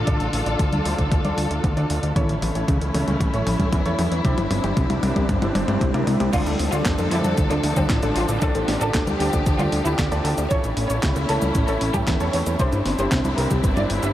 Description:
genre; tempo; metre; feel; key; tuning
italo disco; 115 BPM; 4/4; straight; D minor; A4 = 444 Hz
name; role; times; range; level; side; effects
warm studio string section; sustained chords; 0.0-14.1 s; D3 to A4; -27 LUFS; left 1 dB; none
warbly dusty pluck; arpeggios; 0.0-14.1 s; C4 to D5; -31 LUFS; equal; chorus, cassette tape, analog delay
fat analog bass; bass; 0.0-14.1 s; G1 to F2; -24 LUFS; equal; none
clear concert grand piano; stabs; 0.1-14.1 s; C#4 to D5; -30 LUFS; right 1 dB; lush chorus, low-pass filter, analog delay
clean 12-bit digital drum machine; drums; 0.1-14.1 s; cabasa, congas, crash cymbal, handclaps, hi-hat, snare drum, toms; -26 LUFS; left 1 dB; overdrive
electronic kick drum; drums; 0.1-13.7 s; none; -23 LUFS; equal; overdrive
bright symphonic violin section; melody; 6.3-14.1 s; C4 to E5; -28 LUFS; right 1 dB; analog delay
room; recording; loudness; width
wet huge ambient reverb, RT60 8.1 s; dreamy mix soaked in reverb, vinyl crackle; -19 LUFS; side -13 dB against mid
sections
0.0-6.3 A section; 6.3-14.1 B section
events
drum fill 0.0-6.3; filter sweep on synth arpeggio sound 0.0-6.3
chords
0.0 Dm; 2.2 A; 4.2 Cadd9; 6.3 Dm; 10.5 A; 12.6 Cadd9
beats
| 0.07 0.60 1.12 1.64 | 2.16 2.68 3.20 3.73 | 4.25 4.77 5.29 5.81 | 6.33 6.86 7.38 7.90 | 8.42 8.94 9.46 9.99 | 10.51 11.03 11.55 12.07 | 12.60 13.12 13.64

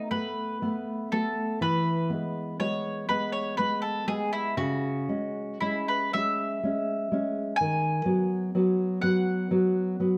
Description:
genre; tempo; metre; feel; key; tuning
romantic duo for mandolin and classical guitar; 38-43 BPM (dotted quarters); 6/8; rubato; E major; A4 = 440 Hz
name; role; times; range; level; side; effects
mandolin; melody; 0.0-10.2 s; E4 to G#5; -32 LUFS; equal; none
nylon-string guitar; accompaniment; 0.0-10.2 s; C#3 to C#4; -30 LUFS; equal; none
room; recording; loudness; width
moderate recital hall reverb, RT60 1.4 s; close, detailed microphones; -28 LUFS; mono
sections
0.0-10.2 A section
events
none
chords
0.0 B7(no3); 1.6 E; 4.6 C#m; 7.6 B/D#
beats
0.11 | 1.62 3.09 | 4.58 6.14 | 7.59 9.02

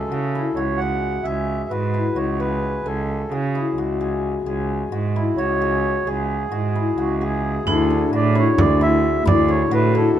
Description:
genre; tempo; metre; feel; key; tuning
contemporary instrumental, chamber music in an uneven meter; 262 BPM (eighths); 7/8; straight; C# phrygian; A4 = 440 Hz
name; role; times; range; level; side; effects
mellow accordion; melody; 0.0-10.2 s; E4 to F#5; -24 LUFS; right 3 dB; none
cimbalom; arpeggios; 0.0-10.2 s; D4 to G#5; -23 LUFS; left 5 dB; none
rich cello; bass; 0.0-10.2 s; C#2 to C#3; -23 LUFS; right 3 dB; none
vibraphone with hard mallets; second line; 7.7-10.2 s; D4; -25 LUFS; left 2 dB; none
warbly tape-like pad; sustained chords; 8.6-10.2 s; D3 to E4; -29 LUFS; left 1 dB; none
frame drum; percussion; 7.7-9.5 s; none; -20 LUFS; right 1 dB; none
room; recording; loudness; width
light reverb; none; -18 LUFS; side -10 dB against mid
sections
0.0-7.7 A section; 7.7-10.2 B section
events
none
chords
0.0 C#m; 7.7 Dsus2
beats
0.12 0.35 0.58 0.81 1.04 | 1.26 1.49 1.72 1.95 2.18 2.41 2.64 | 2.87 3.10 3.33 3.56 3.79 4.01 4.24 | 4.47 4.70 4.93 5.16 5.39 5.62 5.84 | 6.07 6.30 6.53 6.76 6.99 7.22 7.45 | 7.67 7.90 8.13 8.36 8.59 8.81 9.04 | 9.27 9.50 9.73 9.96 10.18

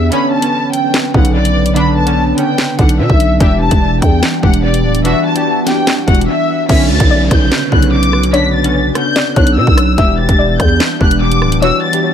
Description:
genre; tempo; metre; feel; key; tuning
hip hop, drill; 146 BPM; 4/4; half-time; B minor; A4 = 440 Hz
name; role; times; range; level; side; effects
warm studio violin section; melody; 0.0-12.1 s; D5 to B6; -17 LUFS; left 2 dB; low-pass filter, analog delay
warbly tape-like pad; sustained chords; 0.0-12.1 s; E3 to B4; -20 LUFS; right 2 dB; chorus, built-in reverb
growling 808-style bass; bass; 0.0-11.7 s; D1 to B2; -14 LUFS; equal; none
glassy digital keys; accompaniment; 0.1-12.1 s; C#3 to G4; -17 LUFS; equal; chorus, low-pass filter, analog delay
drill drum kit; drums; 0.1-12.0 s; crash cymbal, handclaps, hi-hat, kick drum, rim click, snare drum; -14 LUFS; equal; analog delay
soft round pluck; second line; 6.7-12.1 s; C#5 to E5; -21 LUFS; left 5 dB; chorus, analog delay
downlifter; sound effects; 6.7-10.0 s; none; -26 LUFS; equal; none
room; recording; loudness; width
digital ambience; echo-heavy mix; -10 LUFS; side -8 dB against mid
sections
0.0-6.7 A section; 6.7-12.1 B section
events
break 0.1-0.9, 6.3-6.7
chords
0.1 Bmadd9; 3.4 Em7; 6.7 Bmadd9; 10.0 Em7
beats
| 0.12 0.53 0.94 1.35 | 1.76 2.17 2.58 2.99 | 3.40 3.82 4.23 4.64 | 5.05 5.46 5.87 6.28 | 6.69 7.10 7.51 7.92 | 8.34 8.75 9.16 9.57 | 9.98 10.39 10.80 11.21 | 11.62 12.04

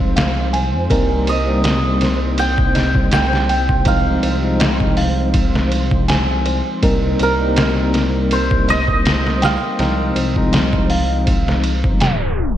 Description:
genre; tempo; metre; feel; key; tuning
trip hop; 81 BPM; 4/4; swing 54% on 16ths; C minor; A4 = 440 Hz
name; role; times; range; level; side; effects
bright tine electric piano; accompaniment; 0.0-12.6 s; F3 to Eb4; -21 LUFS; left 1 dB; tremolo, tape echo
dark detuned saw bass; bass; 0.0-12.6 s; G1 to F2; -20 LUFS; equal; none
flickering grainy texture; texture; 0.0-12.6 s; C5; -31 LUFS; right 2 dB; built-in reverb, ensemble chorus
music box; arpeggios; 0.2-12.6 s; Bb4 to Ab5; -25 LUFS; right 1 dB; tape echo
trip hop sampler-style drum kit; drums; 0.2-12.6 s; hi-hat, kick drum, ride cymbal, snare drum; -19 LUFS; equal; vintage 12-bit sampler grit, gated reverb
santur; melody; 1.3-11.7 s; Bb4 to G5; -22 LUFS; right 2 dB; tape echo
room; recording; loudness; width
moderate lush hall reverb, RT60 1.9 s; bright 1980s-style digital production, tape stop; -14 LUFS; side -11 dB against mid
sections
0.0-12.6 A section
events
tape stop 12.0-12.6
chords
0.0 Fm7/C; 0.9 Cm7; 3.9 Fm7/C; 6.8 Cm7; 9.8 Fm7/C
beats
0.16 | 0.90 1.64 2.38 3.12 | 3.86 4.61 5.34 6.09 | 6.83 7.57 8.31 9.05 | 9.79 10.53 11.27 12.01

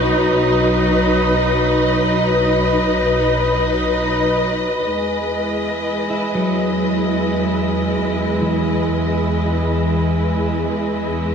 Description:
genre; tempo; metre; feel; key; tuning
ambient; free time; none; none; E major; A4 = 440 Hz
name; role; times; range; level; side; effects
dark studio string section; sustained chords; 0.0-11.3 s; F#3 to D#5; -18 LUFS; equal; none
dark studio double bass section; bass; 0.0-11.3 s; B1 to E2; -24 LUFS; right 1 dB; none
glass harmonica; texture; 0.0-11.3 s; G#4 to B5; -26 LUFS; left 1 dB; none
bowed-like drone; drone; 7.7-11.3 s; E3; -33 LUFS; left 1 dB; none
electric guitar at the edge of break-up; arpeggios; 6.1-10.6 s; E3 to E4; -21 LUFS; equal; diffuse ambient delay
room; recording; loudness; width
wet scoring stage reverb, RT60 1.9 s; cassette tape; -16 LUFS; side -6 dB against mid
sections
0.0-4.9 A section; 4.9-11.3 B section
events
none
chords
0.0 B; 4.9 Emaj7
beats
free time

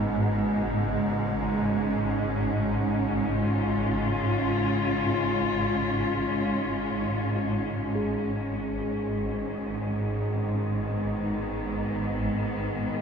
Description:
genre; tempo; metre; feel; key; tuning
dark ambient drone; free time; none; none; G# minor; A4 = 441 Hz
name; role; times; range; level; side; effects
dark studio cello section; sustained chords; 0.0-13.0 s; G#2 to E#4; -28 LUFS; left 1 dB; stereo widening
swarming drone; drone; 0.0-13.0 s; G#1 to G#2; -28 LUFS; right 1 dB; built-in reverb
quartz singing bowl; texture; 8.0-13.0 s; G#4; -38 LUFS; right 2 dB; none
room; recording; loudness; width
wet cathedral reverb, RT60 5.9 s; none; -25 LUFS; side -6 dB against mid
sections
0.0-7.9 A section; 7.9-13.0 B section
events
none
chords
0.1 C#; 7.9 G#m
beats
free time

